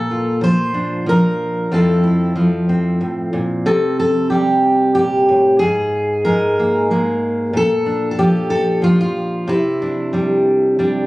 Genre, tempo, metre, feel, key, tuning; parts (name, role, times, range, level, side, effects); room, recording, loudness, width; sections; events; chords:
folk, solo fingerstyle acoustic guitar; 92 BPM; 3/4; straight; A4 = 440 Hz
fingerpicked steel-string acoustic guitar; solo; 0.0-11.1 s; F2 to C5; -14 LUFS; equal
light reverb; recorded on a phone in the room, studio reverb; -14 LUFS; side -19 dB against mid
0.0-11.1 A section
0.0 Bbmaj7; 1.7 Fmaj7; 3.7 C5; 5.6 Absus2; 7.5 Bb; 9.5 Cadd9